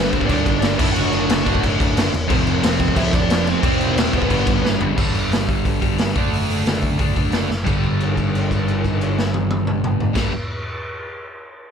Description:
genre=punk rock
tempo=179 BPM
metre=4/4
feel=straight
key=G major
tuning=A4 = 437 Hz
part: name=bluesy overdriven lead guitar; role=melody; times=0.0-4.7 s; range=B3 to F#5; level=-24 LUFS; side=right 2 dB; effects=distortion
part: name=cranked stack guitar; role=riff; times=0.0-10.3 s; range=F2 to D4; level=-24 LUFS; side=left 15 dB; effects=overdrive
part: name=sludgy distorted guitar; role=riff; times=0.0-10.3 s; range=F2 to D4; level=-23 LUFS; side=right 13 dB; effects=overdrive
part: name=thick fuzz guitar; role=riff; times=0.0-5.0 s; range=G2 to G4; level=-26 LUFS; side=equal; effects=none
part: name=overdriven picked electric bass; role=bass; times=0.0-10.3 s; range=E1 to D2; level=-24 LUFS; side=equal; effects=none
part: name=raw garage drum kit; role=drums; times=0.1-10.2 s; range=crash cymbal, hi-hat, kick drum, snare drum, toms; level=-21 LUFS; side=left 1 dB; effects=none
room=little or no reverb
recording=none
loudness=-16 LUFS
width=side -7 dB against mid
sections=0.0-5.0 A section; 5.0-7.7 B section; 7.7-10.4 C section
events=drum fill 4.6-5.0, 7.5; held note 7.7-10.2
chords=0.0 G; 0.8 D/F#; 2.3 F; 3.6 C/E; 4.3 G; 5.0 G5; 6.1 D/F#; 7.7 G5

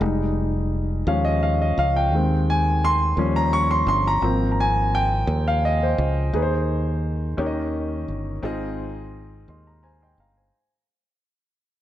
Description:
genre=slow gospel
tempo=57 BPM (dotted quarters)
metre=6/8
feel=straight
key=Ab major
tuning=A4 = 439 Hz
part: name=warm concert grand piano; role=accompaniment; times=0.0-10.7 s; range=Ab2 to Db6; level=-22 LUFS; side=equal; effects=none
part: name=fingered electric bass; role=bass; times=0.0-10.5 s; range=F1 to Eb2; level=-23 LUFS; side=equal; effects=none
room=light reverb, small room ambience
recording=none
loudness=-19 LUFS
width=side -12 dB against mid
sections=0.0-6.3 A section; 6.3-10.5 B section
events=grand piano solo 0.0-6.3; fade-out 6.3-10.5; grand piano fill 9.5-10.5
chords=0.0 Fm7; 1.1 Eb9sus4; 2.1 Ab/Eb; 3.2 Eb7; 4.2 Ab6; 6.3 Ab/Eb; 7.4 Eb7; 8.4 Ab6

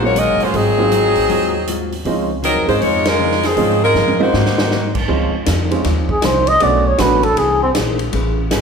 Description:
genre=jazz, big band swing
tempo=158 BPM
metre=4/4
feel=swing 65% on 8ths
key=Db major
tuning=A4 = 440 Hz
part: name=vintage hollow-body jazz guitar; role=accompaniment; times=0.0-8.6 s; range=Ab2 to B4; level=-24 LUFS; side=left 3 dB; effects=none
part: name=warm baby grand piano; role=accompaniment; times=0.0-7.2 s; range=Gb3 to Ab4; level=-21 LUFS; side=right 4 dB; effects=none
part: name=upright bass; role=bass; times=0.0-8.6 s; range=G1 to Ab2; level=-21 LUFS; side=equal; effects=none
part: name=bright saxophone section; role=melody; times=0.1-5.0 s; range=F3 to Eb5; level=-15 LUFS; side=left 1 dB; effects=none
part: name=swinging big-band drum kit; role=drums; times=0.2-8.6 s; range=crash cymbal, hi-hat, kick drum, ride cymbal, snare drum, toms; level=-22 LUFS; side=right 1 dB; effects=none
part: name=breathy trumpet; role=melody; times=6.1-7.7 s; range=B#3 to Eb5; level=-15 LUFS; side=equal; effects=none
room=moderate recital hall reverb, RT60 1.6 s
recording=recorded in a church or concert hall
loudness=-13 LUFS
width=side -6 dB against mid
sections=0.0-5.1 A section; 5.1-8.6 B section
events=band accent 3.0; drum fill 4.0-4.7; trumpet solo 5.1-8.6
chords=0.0 Ebm11; 0.5 Ab13; 2.1 Dbmaj9; 4.3 Ab9; 5.1 Dbmaj9; 6.6 Cbm7; 7.4 Eaug7

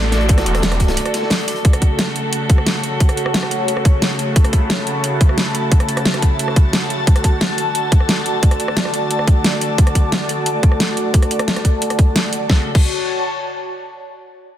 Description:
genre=dark technical drum and bass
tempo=177 BPM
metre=4/4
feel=straight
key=F# minor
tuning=A4 = 441 Hz
part: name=rich chamber string section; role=sustained chords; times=0.0-12.7 s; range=C#3 to A4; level=-23 LUFS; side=equal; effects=sidechain pumping, low-pass filter
part: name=snarling distorted saw bass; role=bass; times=0.0-1.0 s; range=E1 to A1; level=-18 LUFS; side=equal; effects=distortion, overdrive
part: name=airy breathy pad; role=texture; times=0.0-13.8 s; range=F#4 to A5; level=-23 LUFS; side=equal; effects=chorus, phaser, sidechain pumping
part: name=crunchy breakbeat drum kit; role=drums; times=0.1-1.6 s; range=hi-hat, snare drum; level=-27 LUFS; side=equal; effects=high-pass filter on hats, studio reverb, high-pass filter on snare, high-pass filter on room
part: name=dubstep drum kit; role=drums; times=0.1-12.8 s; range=crash cymbal, hi-hat, rim click, snare drum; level=-20 LUFS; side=equal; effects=studio reverb
part: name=electronic kick drum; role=drums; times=0.3-12.8 s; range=none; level=-12 LUFS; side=equal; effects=overdrive, studio reverb
room=light reverb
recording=dense, heavily limited modern master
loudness=-14 LUFS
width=side -11 dB against mid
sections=0.0-12.5 A section; 12.5-13.9 B section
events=filter sweep on string section 0.0-12.5; break 1.0-1.6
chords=0.0 D; 1.6 F#m; 7.1 D; 12.5 F#m

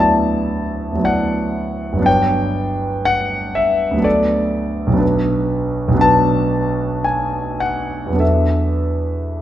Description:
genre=classical, impressionist solo piano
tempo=49-62 BPM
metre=3/4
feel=rubato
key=D major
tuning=A4 = 440 Hz
part: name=warm concert grand piano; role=solo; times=0.0-9.4 s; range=G1 to A5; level=-15 LUFS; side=equal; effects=none
room=wet recital hall reverb, RT60 1.6 s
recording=none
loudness=-15 LUFS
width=side -12 dB against mid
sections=0.0-9.4 A section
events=none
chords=0.0 D69; 2.1 Gmaj7#11; 4.1 D6; 5.0 Bm7; 8.2 E9sus4

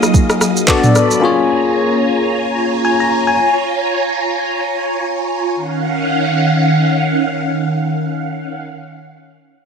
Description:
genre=amapiano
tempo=free time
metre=none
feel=none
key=Eb minor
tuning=A4 = 440 Hz
part: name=bell-like tine electric piano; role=accompaniment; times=0.0-3.5 s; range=Bb3 to Bb5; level=-14 LUFS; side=left 4 dB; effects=phaser
part: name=string machine, violas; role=sustained chords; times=0.0-8.6 s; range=Eb3 to Eb6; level=-16 LUFS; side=right 1 dB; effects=phaser, ensemble chorus, sidechain pumping
part: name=smooth R&B drum kit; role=drums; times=0.0-1.2 s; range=handclaps, kick drum, rim click, shaker, toms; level=-13 LUFS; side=right 1 dB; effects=overdrive
room=light reverb, digital ambience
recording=none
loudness=-13 LUFS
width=side -6 dB against mid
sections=0.0-5.5 A section; 5.5-9.7 B section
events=drop 0.0-5.5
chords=0.0 Ebm9; 0.7 Bm7; 1.2 Bbm7; 5.5 Ebm9

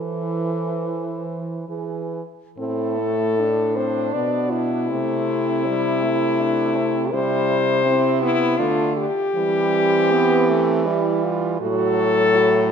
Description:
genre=classical, lyrical piece for horn quartet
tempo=80 BPM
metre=3/4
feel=uneven beats, rubato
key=A minor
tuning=A4 = 444 Hz
part: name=warm French horn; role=melody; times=0.0-12.7 s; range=E4 to D5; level=-21 LUFS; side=left 4 dB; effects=none
part: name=warm French horn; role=second line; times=0.0-12.7 s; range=C4 to A4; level=-27 LUFS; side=right 9 dB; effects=none
part: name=warm French horn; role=accompaniment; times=0.0-12.7 s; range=E3 to D4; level=-26 LUFS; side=left 1 dB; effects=none
part: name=warm French horn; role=bass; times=0.0-12.7 s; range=A2 to E3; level=-25 LUFS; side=right 3 dB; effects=none
room=moderate scoring stage reverb, RT60 2.1 s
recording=none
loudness=-18 LUFS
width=side -7 dB against mid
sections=0.0-2.6 A section; 2.6-12.7 B section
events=none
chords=0.0 Am/E; 2.6 Am; 4.9 Am/C; 7.1 C; 9.4 C/E; 11.6 A5

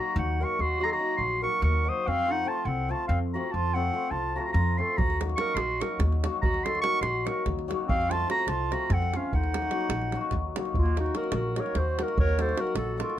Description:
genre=balkan folk, Balkan wedding band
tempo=290 BPM (eighths)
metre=7/8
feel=straight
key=Eb dorian sharp4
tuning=A4 = 440 Hz
part: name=mellow clarinet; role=melody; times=0.0-13.2 s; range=F4 to Eb6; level=-30 LUFS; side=right 1 dB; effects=none
part: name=clear clarinet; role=second line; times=0.0-13.2 s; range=Bb3 to C5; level=-33 LUFS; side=right 2 dB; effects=none
part: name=hammered dulcimer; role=accompaniment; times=0.0-13.2 s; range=F3 to Bb4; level=-34 LUFS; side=left 7 dB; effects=none
part: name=upright bass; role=bass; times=0.2-13.0 s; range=Bb1 to F2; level=-28 LUFS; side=equal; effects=none
part: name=davul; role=percussion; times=5.0-13.1 s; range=none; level=-32 LUFS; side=right 2 dB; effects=none
room=light reverb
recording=close, detailed microphones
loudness=-25 LUFS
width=side -12 dB against mid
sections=0.0-10.8 A section; 10.8-13.2 B section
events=speeding up 0.0-13.2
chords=0.0 Ebm; 2.1 F; 5.0 Ebm; 7.9 F; 9.3 Ebm

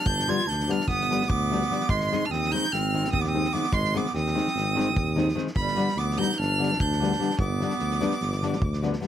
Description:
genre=balkan folk, Balkan wedding band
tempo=295 BPM (eighths)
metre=9/8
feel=straight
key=G phrygian dominant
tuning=A4 = 440 Hz
part: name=rich violin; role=melody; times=0.0-8.8 s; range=B5 to Ab6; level=-29 LUFS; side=right 1 dB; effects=none
part: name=clear clarinet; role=second line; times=0.0-8.8 s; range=G3 to F4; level=-30 LUFS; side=right 3 dB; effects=none
part: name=dark tuba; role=bass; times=0.0-9.0 s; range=G1 to Eb2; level=-29 LUFS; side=equal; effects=none
part: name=loose indie drum kit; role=percussion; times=0.1-9.1 s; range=kick drum, snare drum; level=-32 LUFS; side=equal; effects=none
part: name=nylon-string guitar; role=accompaniment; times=0.3-9.1 s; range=D3 to Eb4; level=-28 LUFS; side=left 4 dB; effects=none
room=light reverb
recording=none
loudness=-23 LUFS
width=side -10 dB against mid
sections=0.0-9.1 A section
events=none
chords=0.0 G; 1.9 Ab; 5.6 G

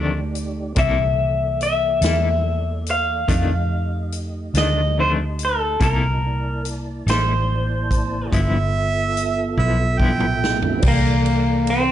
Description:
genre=slow blues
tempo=48 BPM (dotted quarters)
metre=12/8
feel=straight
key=C mixolydian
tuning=A4 = 436 Hz
part: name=clean electric guitar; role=accompaniment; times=0.0-10.3 s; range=F2 to A4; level=-26 LUFS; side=left 4 dB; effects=tremolo
part: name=mellow tonewheel organ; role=sustained chords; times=0.0-11.9 s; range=E3 to A5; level=-29 LUFS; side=right 3 dB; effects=chorus vibrato, slow rotary speaker
part: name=vintage muted fingered electric bass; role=bass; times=0.0-11.9 s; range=G1 to F2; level=-22 LUFS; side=equal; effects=none
part: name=swinging big-band drum kit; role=drums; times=0.4-11.9 s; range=crash cymbal, hi-hat, kick drum, ride cymbal, snare drum, toms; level=-24 LUFS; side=equal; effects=none
part: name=electric guitar through a small old amp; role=melody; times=0.8-11.9 s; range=Bb3 to F5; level=-21 LUFS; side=left 2 dB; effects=none
part: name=warm harmonica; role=second line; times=8.3-10.6 s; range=E5 to G5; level=-24 LUFS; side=right 5 dB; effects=overdrive, analog delay
room=light reverb, small room ambience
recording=nothing above 10.5 kHz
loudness=-18 LUFS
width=side -11 dB against mid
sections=0.0-10.8 A section; 10.8-11.9 A section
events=drum fill 9.6-10.8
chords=0.0 F13; 0.8 C13; 3.3 F13; 5.8 C13; 8.3 G13; 10.8 C13

